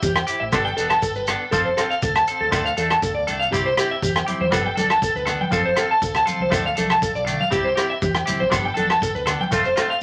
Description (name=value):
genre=highlife guitar band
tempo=120 BPM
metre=4/4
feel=straight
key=C major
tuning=A4 = 440 Hz
part: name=tonewheel organ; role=sustained chords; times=0.0-10.0 s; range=B4 to A5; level=-38 LUFS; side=equal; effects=slow rotary speaker, chorus vibrato
part: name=electric guitar through a small old amp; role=arpeggios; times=0.0-10.0 s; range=G4 to A5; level=-23 LUFS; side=equal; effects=harmonic tremolo
part: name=deep dub fingered electric bass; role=bass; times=0.0-9.7 s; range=E1 to E2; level=-34 LUFS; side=equal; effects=none
part: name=warm soul drum kit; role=drums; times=0.0-9.9 s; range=hi-hat, kick drum, rim click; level=-28 LUFS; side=equal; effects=none
part: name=shekere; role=percussion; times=0.0-9.9 s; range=none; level=-33 LUFS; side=equal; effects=none
part: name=agogo bells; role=percussion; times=0.2-9.9 s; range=none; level=-38 LUFS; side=equal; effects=none
part: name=semi-hollow electric guitar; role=accompaniment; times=0.3-9.9 s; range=F3 to A4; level=-28 LUFS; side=equal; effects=none
part: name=congas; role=percussion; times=4.3-9.5 s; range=none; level=-31 LUFS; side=equal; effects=none
room=moderate club reverb, RT60 0.7 s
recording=vinyl crackle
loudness=-21 LUFS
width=mono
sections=0.0-10.0 A section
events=none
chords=0.0 C; 0.5 Gadd9; 1.5 F; 2.5 Dm; 3.5 C; 4.5 Gadd9; 5.5 F; 6.5 Dm; 7.5 C; 8.5 Gadd9; 9.5 F